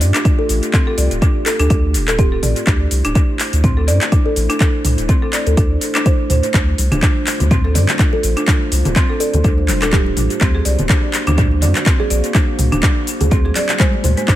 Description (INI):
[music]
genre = afro house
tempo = 124 BPM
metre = 4/4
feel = swing 56% on 16ths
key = D minor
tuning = A4 = 443 Hz
[part]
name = kalimba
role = melody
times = 0.0-14.2 s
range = G4 to D5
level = -25 LUFS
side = right 2 dB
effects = dub echo
[part]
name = dark analog pad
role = sustained chords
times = 0.0-14.4 s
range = A3 to C5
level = -27 LUFS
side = left 1 dB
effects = chorus, sidechain pumping
[part]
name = warm sub bass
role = bass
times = 0.0-14.4 s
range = D1 to G2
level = -16 LUFS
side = equal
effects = sidechain pumping
[part]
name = deep house drum kit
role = drums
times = 0.0-14.4 s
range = cabasa, handclaps, hi-hat, toms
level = -21 LUFS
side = equal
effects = overdrive, dub echo
[part]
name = buzzing marimba with hard mallets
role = arpeggios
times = 0.1-14.4 s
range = G#3 to D5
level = -23 LUFS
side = equal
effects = sidechain pumping, dub echo
[part]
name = electronic kick drum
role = drums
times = 0.3-14.4 s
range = none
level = -15 LUFS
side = equal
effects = overdrive
[part]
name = congas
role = percussion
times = 6.5-14.4 s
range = none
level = -24 LUFS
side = left 1 dB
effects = dub echo
[sound]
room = digital ambience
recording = echo-heavy mix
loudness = -13 LUFS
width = side -13 dB against mid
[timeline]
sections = 0.0-14.4 A section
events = none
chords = 0.0 Gsus2; 2.7 C69/D; 6.5 Dm7; 10.4 Daug7